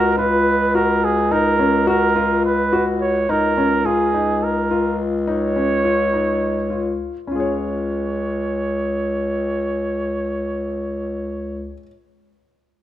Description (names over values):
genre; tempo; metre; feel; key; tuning
contemporary instrumental, contemporary; 210 BPM (eighths); 7/8; straight; Db mixolydian; A4 = 440 Hz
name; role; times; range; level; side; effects
clear flugelhorn; melody; 0.0-11.7 s; Ab4 to Db5; -21 LUFS; right 3 dB; none
warm concert grand piano; arpeggios; 0.0-11.9 s; Db4 to Db5; -23 LUFS; left 3 dB; none
clear bass clarinet; bass; 0.0-11.7 s; Db2; -22 LUFS; left 2 dB; none
room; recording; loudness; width
light reverb; none; -17 LUFS; side -12 dB against mid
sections
0.0-7.3 A section; 7.3-11.3 B section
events
none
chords
0.0 Gbmaj7/Db; 3.3 Db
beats
0.18 0.46 0.75 1.03 | 1.31 1.59 1.88 2.16 2.44 2.73 3.01 | 3.29 3.58 3.86 4.14 4.43 4.71 5.00 | 5.28 5.56 5.85 6.13 6.42 6.71 6.99 | 7.28 7.57 7.86 8.14 8.43 8.72 9.00 | 9.29 9.58 9.87 10.15 10.44 10.73 11.02